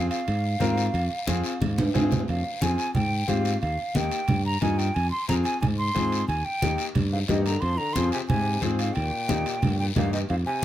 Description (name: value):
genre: latin, cumbia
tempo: 180 BPM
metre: 4/4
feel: straight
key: F minor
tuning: A4 = 441 Hz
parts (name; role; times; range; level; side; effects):
- hollow concert flute; melody; 0.0-10.6 s; Eb5 to C6; -29 LUFS; right 1 dB; none
- clear upright piano; accompaniment; 0.0-10.2 s; Bb3 to Bb4; -30 LUFS; left 4 dB; none
- fingered electric bass; bass; 0.0-10.4 s; Eb2 to Ab2; -26 LUFS; equal; none
- guiro; percussion; 0.1-10.6 s; none; -37 LUFS; left 8 dB; none
- timbales; percussion; 0.1-10.5 s; none; -35 LUFS; right 3 dB; none
- congas; percussion; 0.3-10.6 s; none; -28 LUFS; right 1 dB; none
- bright trombone; second line; 7.1-10.6 s; G2 to F3; -34 LUFS; left 3 dB; tape echo
room: moderate studio reverb, RT60 0.5 s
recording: none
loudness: -23 LUFS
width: side -12 dB against mid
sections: 0.0-2.3 A section; 2.3-10.6 A section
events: drum fill 1.6-2.3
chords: 0.0 Fm; 3.6 Eb; 5.0 Fm; 6.3 Eb; 7.6 Fm; 9.0 Eb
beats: 0.27 0.61 | 0.94 1.28 1.61 1.95 | 2.28 2.62 2.95 3.29 | 3.62 3.95 4.29 4.62 | 4.96 5.29 5.62 5.96 | 6.29 6.63 6.96 7.29 | 7.63 7.96 8.29 8.63 | 8.96 9.30 9.63 9.96 | 10.30 10.63